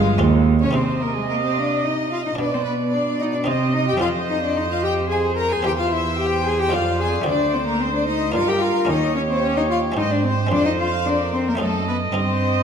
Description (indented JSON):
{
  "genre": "classical, baroque-style concerto movement with solo episodes",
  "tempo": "110 BPM",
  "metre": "3/4",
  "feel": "straight",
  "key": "C minor",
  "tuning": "A4 = 439 Hz",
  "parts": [
    { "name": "dark cello", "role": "melody", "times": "0.0-12.6 s", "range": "F3 to Bb4", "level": "-23 LUFS", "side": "left 2 dB", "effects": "none" },
    { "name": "warm studio violin section", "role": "melody", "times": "0.0-12.6 s", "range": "F4 to F5", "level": "-31 LUFS", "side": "left 4 dB", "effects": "none" },
    { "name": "clear chamber violin section", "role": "second line", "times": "0.0-12.6 s", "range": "F4 to Bb5", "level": "-26 LUFS", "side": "left 3 dB", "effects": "none" },
    { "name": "buff-stop harpsichord", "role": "accompaniment", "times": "0.0-12.6 s", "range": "D2 to G4", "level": "-28 LUFS", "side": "equal", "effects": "none" },
    { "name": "rich chamber viola section", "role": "accompaniment", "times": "0.0-12.6 s", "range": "Ab3 to Eb5", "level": "-26 LUFS", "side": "right 3 dB", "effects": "none" },
    { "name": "rich chamber cello section", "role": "bass", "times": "0.0-12.6 s", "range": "D2 to C3", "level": "-24 LUFS", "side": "right 3 dB", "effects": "none" },
    { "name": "rich chamber double bass section", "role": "bass", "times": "0.0-0.7 s", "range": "G1 to Eb2", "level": "-24 LUFS", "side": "right 5 dB", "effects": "none" }
  ],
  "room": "wet recital hall reverb, RT60 1.5 s",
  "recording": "none",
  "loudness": "-18 LUFS",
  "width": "side -7 dB against mid",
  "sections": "0.7-12.6 A section",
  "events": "none",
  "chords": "0.0 Fm; 0.7 Cm; 2.4 Bm; 3.5 Cm; 4.0 Fm; 5.6 C/E; 6.7 Fm; 7.3 D7; 8.4 Gm; 8.9 Eb7; 10.0 Ab; 10.5 Fm; 11.6 F#dim7"
}